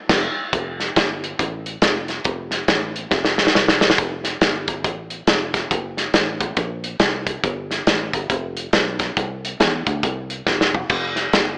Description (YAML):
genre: uptempo gospel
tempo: 139 BPM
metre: 4/4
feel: swing 61% on 8ths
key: F major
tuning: A4 = 441 Hz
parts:
  - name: fingered electric bass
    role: bass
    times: 0.1-11.6 s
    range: E1 to E2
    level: -28 LUFS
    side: equal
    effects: none
  - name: modern studio drum kit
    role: drums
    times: 0.1-11.5 s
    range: crash cymbal, hi-hat, kick drum, snare drum, toms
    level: -18 LUFS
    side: equal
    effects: none
room: light reverb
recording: AM radio sound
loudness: -18 LUFS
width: side -35 dB against mid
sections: 0.5-4.0 A section; 4.0-11.6 B section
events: band accent 0.0-0.5; drum fill 3.1-4.0, 10.5-10.9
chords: none